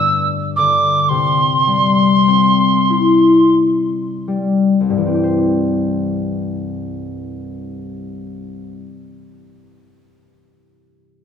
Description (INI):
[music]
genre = celtic folk, Celtic slow air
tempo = 26-40 BPM (dotted quarters)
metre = 6/8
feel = rubato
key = C major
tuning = A4 = 440 Hz
[part]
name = mellow tin whistle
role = melody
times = 0.0-3.5 s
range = C6 to E6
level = -15 LUFS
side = right 1 dB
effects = none
[part]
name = concert harp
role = accompaniment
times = 0.0-8.9 s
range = C2 to C5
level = -15 LUFS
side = left 3 dB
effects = none
[sound]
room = moderate concert hall reverb, RT60 2.4 s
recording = minimal, uncompressed stereo recording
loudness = -12 LUFS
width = side -8 dB against mid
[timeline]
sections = 0.0-5.0 A section; 5.0-9.6 B section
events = slowing down 0.0-5.0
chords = 0.0 G; 1.1 C